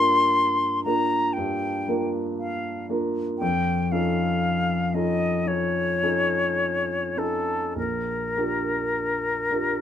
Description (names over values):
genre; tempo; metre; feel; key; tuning
classical, impressionist duo for flute and grand piano; 49-59 BPM; 4/4; rubato; unclear; A4 = 440 Hz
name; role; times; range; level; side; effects
bright concert flute; melody; 0.0-9.8 s; A4 to C6; -24 LUFS; left 2 dB; none
warm concert grand piano; accompaniment; 0.0-9.8 s; Bb1 to Bb4; -26 LUFS; equal; none
room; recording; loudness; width
light reverb; minimal, uncompressed stereo recording; -22 LUFS; side -9 dB against mid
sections
0.0-9.8 A section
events
none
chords
0.0 Bb6/G; 3.4 Faug7; 7.8 Bb6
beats
0.35 1.37 2.40 | 3.42 4.43 5.48 6.58 | 7.76 8.95